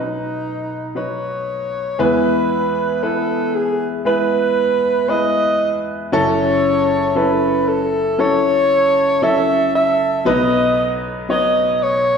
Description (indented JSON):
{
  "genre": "pop ballad",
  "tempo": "58 BPM",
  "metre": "4/4",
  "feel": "straight",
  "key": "E major",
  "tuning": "A4 = 440 Hz",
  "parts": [
    { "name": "mellow alto saxophone", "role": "melody", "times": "0.0-12.2 s", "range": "D#4 to E5", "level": "-17 LUFS", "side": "right 1 dB", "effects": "none" },
    { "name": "clear concert grand piano", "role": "accompaniment", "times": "0.0-12.2 s", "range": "F#1 to C#5", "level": "-19 LUFS", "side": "left 1 dB", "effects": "none" }
  ],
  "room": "wet large studio reverb, RT60 1.2 s",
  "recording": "band playing live in one room",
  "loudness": "-15 LUFS",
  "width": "side -6 dB against mid",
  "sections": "0.0-2.0 A section; 2.0-12.2 B section",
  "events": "none",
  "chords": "0.0 B; 2.0 E; 6.1 F#m7; 10.3 B"
}